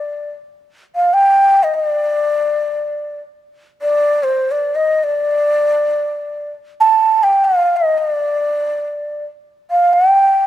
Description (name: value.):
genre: Arabic maqam ensemble.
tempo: free time.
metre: none.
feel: none.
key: D maqam kurd.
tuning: A4 = 440 Hz.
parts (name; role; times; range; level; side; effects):
breathy mellow ney; solo; 0.0-10.5 s; C5 to A5; -13 LUFS; equal; none.
room: light reverb.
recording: close, detailed microphones.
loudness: -13 LUFS.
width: side -12 dB against mid.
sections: 0.0-10.5 A section.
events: none.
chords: none.